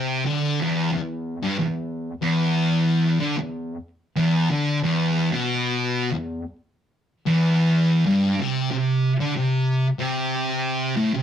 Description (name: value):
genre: metal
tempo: 62 BPM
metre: 4/4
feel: swing 64% on 8ths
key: unclear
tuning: A4 = 439 Hz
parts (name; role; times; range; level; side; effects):
- thick fuzz guitar; solo; 0.0-11.2 s; E2 to D3; -20 LUFS; equal; distortion
room: wet small room reverb, RT60 0.5 s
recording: rough rehearsal-room recording, warm saturation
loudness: -20 LUFS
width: side -9 dB against mid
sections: 0.0-11.2 A section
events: none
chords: none